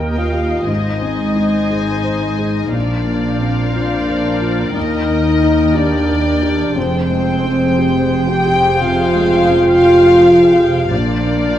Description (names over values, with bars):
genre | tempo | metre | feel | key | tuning
cinematic | 59 BPM | 4/4 | rubato | Eb major | A4 = 440 Hz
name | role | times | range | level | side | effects
rich studio violin section | melody | 0.0-11.6 s | F5 to Ab5 | -26 LUFS | equal | none
dark studio violin section | second line | 0.0-11.6 s | Bb4 to G5 | -22 LUFS | left 3 dB | none
dark studio viola section | accompaniment | 0.0-11.6 s | Eb4 to Eb5 | -25 LUFS | left 1 dB | none
felt-muted upright piano | accompaniment | 0.0-11.6 s | Bb1 to C5 | -24 LUFS | left 2 dB | none
mellow French horn section | sustained chords | 0.0-11.6 s | Bb3 to G4 | -15 LUFS | equal | none
warm studio cello section | bass | 0.0-11.6 s | Eb2 to Bb2 | -22 LUFS | right 2 dB | none
warm studio double bass section | bass | 0.0-11.6 s | F1 to Eb2 | -22 LUFS | right 3 dB | none
room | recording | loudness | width
moderate scoring stage reverb, RT60 2.0 s | worn, warbling old tape, cassette tape, warbly pitch drift | -12 LUFS | side -11 dB against mid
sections
0.0-11.6 A section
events
none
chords
0.0 Eb; 0.7 Ab; 2.8 Bbadd9; 4.8 Eb; 6.8 Fmadd9; 10.9 Bbadd9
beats
0.70 1.73 | 2.75 3.76 4.76 5.75 | 6.76 7.79 8.80 9.82 | 10.91